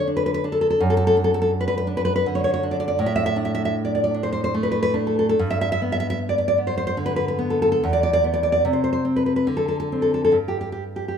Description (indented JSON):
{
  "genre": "romantic piece for solo classical guitar",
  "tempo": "63-87 BPM",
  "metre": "3/4",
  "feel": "rubato",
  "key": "G major",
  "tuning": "A4 = 440 Hz",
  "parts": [
    { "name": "nylon-string guitar", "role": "solo", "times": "0.0-11.2 s", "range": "E2 to E5", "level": "-19 LUFS", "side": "equal", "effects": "none" }
  ],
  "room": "moderate recital hall reverb, RT60 1.3 s",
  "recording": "minimal, uncompressed stereo recording",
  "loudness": "-19 LUFS",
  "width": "side -7 dB against mid",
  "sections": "0.0-11.2 A section",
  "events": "none",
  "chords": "0.0 N.C.; 0.8 D/F#; 3.0 D5/A; 5.4 G; 7.8 E5; 8.6 N.C.; 9.5 Amadd11/D; 10.4 N.C.",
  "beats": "0.08 | 0.80 1.50 2.25 | 2.99 3.75 4.52 | 5.38 6.17 6.94 | 7.82 8.64 9.46 | 10.35"
}